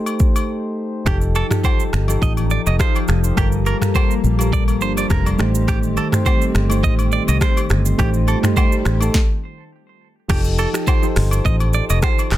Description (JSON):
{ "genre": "afrobeats", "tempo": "104 BPM", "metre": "4/4", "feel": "swing 55% on 16ths", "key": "unclear", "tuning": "A4 = 440 Hz", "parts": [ { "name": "soft electric-piano-like synth keys", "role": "accompaniment", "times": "0.0-12.4 s", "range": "F3 to G5", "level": "-23 LUFS", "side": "equal", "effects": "chorus" }, { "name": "afro-pop drum kit", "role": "drums", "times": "0.1-12.4 s", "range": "crash cymbal, finger snaps, handclaps, hi-hat, kick drum, rim click, shaker, snare drum, toms", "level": "-18 LUFS", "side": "equal", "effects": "soft clipping on snare" }, { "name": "agogo bells and woodblock", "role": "percussion", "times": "0.1-12.3 s", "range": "none", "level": "-31 LUFS", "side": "left 5 dB", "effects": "none" }, { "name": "hollow soft pad", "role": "sustained chords", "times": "1.1-9.1 s", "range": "Eb3 to G4", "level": "-27 LUFS", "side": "left 2 dB", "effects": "ensemble chorus" }, { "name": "direct-recorded clean electric guitar", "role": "riff", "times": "1.1-12.2 s", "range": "G4 to Eb5", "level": "-25 LUFS", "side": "right 8 dB", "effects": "tape echo" }, { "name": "fingered electric bass", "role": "bass", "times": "1.1-12.4 s", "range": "F1 to C2", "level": "-18 LUFS", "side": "equal", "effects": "none" }, { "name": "swell", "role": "sound effects", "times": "7.8-9.1 s", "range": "none", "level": "-32 LUFS", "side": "right 5 dB", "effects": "none" } ], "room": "light reverb", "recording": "dense, heavily limited modern master", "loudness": "-15 LUFS", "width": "side -14 dB against mid", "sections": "0.0-1.1 A section; 1.1-10.3 B section; 10.3-12.4 C section", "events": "break 0.5-1.1; stop 9.1-10.3", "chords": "0.0 Am7b5; 1.1 F9; 3.4 Gm9; 5.4 Am7b5; 10.3 F9", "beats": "0.49 | 1.06 1.64 2.22 2.80 | 3.37 3.95 4.53 5.10 | 5.68 6.26 6.83 7.41 | 7.99 8.56 9.14 9.72 | 10.30 10.87 11.45 12.03" }